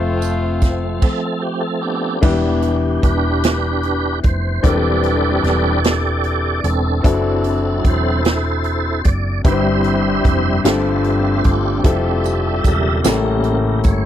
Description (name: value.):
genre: slow gospel.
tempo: 50 BPM (dotted quarters).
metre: 6/8.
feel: straight.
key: unclear.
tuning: A4 = 436 Hz.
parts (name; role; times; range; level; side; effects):
warm baby grand piano; accompaniment; 0.0-14.1 s; G2 to C5; -20 LUFS; left 4 dB; none.
muted French horn section; sustained chords; 0.0-1.0 s; F3 to F4; -31 LUFS; right 1 dB; none.
tonewheel organ; sustained chords; 0.0-14.1 s; Db3 to E5; -21 LUFS; right 2 dB; slow rotary speaker, chorus vibrato.
hollow-body short-scale fingered electric bass; bass; 0.0-14.1 s; E1 to A1; -20 LUFS; right 1 dB; none.
swinging big-band drum kit; drums; 0.2-14.0 s; crash cymbal, hi-hat, kick drum, snare drum; -16 LUFS; right 1 dB; none.
tambourine; percussion; 0.2-1.0, 12.3-14.1 s; none; -31 LUFS; right 17 dB; none.
room: little or no reverb.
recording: dry, close 1970s-style studio recording.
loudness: -15 LUFS.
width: side -11 dB against mid.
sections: 0.0-2.2 A section; 2.2-14.1 B section.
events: tonewheel organ solo 0.0-2.2, 2.2-14.1.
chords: 0.0 F; 2.2 Em7; 4.6 Am11/E; 7.0 D9; 9.4 C/G; 10.6 G9sus4; 11.8 Fmaj9; 13.0 A7b9.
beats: 1.02 | 2.23 3.43 | 4.64 5.84 | 7.04 8.24 | 9.45 10.65 | 11.85 13.04.